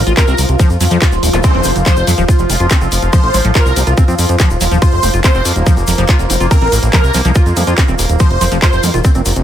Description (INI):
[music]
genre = psychedelic trance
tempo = 142 BPM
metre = 4/4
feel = straight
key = unclear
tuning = A4 = 440 Hz
[part]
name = bubbling stepped-filter texture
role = sustained chords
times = 0.0-9.4 s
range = F3 to F4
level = -20 LUFS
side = equal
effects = chorus, built-in reverb, sidechain pumping
[part]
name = liquid acid bass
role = riff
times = 0.0-9.2 s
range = F3 to F4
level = -20 LUFS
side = left 1 dB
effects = chorus, auto-pan, sidechain pumping, digital delay
[part]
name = fat analog bass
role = bass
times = 0.0-9.4 s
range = Eb1 to F2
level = -14 LUFS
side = equal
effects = none
[part]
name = garage drum kit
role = drums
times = 0.1-9.4 s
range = handclaps, hi-hat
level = -19 LUFS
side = equal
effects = none
[part]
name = tube shaker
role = percussion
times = 0.1-9.4 s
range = none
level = -24 LUFS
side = left 5 dB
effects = none
[part]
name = dense compressed supersaw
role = melody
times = 0.2-8.8 s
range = Bb4 to C5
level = -19 LUFS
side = right 1 dB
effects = phaser, sidechain pumping, digital delay
[part]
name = electronic kick drum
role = drums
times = 0.2-9.1 s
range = none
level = -11 LUFS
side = equal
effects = none
[part]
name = zap and riser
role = sound effects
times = 1.3-1.4, 9.1-9.4 s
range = none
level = -23 LUFS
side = right 1 dB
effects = none
[sound]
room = digital ambience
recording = none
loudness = -9 LUFS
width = side -10 dB against mid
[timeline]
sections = 0.0-9.4 A section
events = none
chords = 0.0 F5